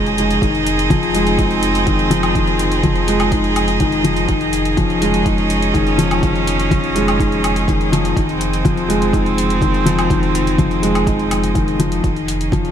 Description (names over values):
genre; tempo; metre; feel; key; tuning
piano and strings electronica; 124 BPM; 4/4; straight; F minor; A4 = 441 Hz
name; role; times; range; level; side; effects
rich string quartet; sustained chords; 0.0-12.7 s; F3 to Ab4; -20 LUFS; right 2 dB; sidechain pumping
felt-muted upright piano; riff; 0.0-12.7 s; Eb3 to Eb4; -17 LUFS; left 2 dB; ping-pong delay
round analog bass; bass; 0.0-12.7 s; F1; -23 LUFS; right 1 dB; sidechain pumping
electronic hi-hat and woodblock; drums; 0.1-12.7 s; none; -26 LUFS; left 1 dB; none
electronic kick drum; drums; 0.4-12.6 s; none; -20 LUFS; right 1 dB; none
room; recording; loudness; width
light reverb, digital ambience; none; -14 LUFS; side -9 dB against mid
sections
0.0-12.7 A section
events
none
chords
0.4 Fm7; 4.3 Dbadd9/F; 8.2 Fm7; 12.0 Dbadd9/F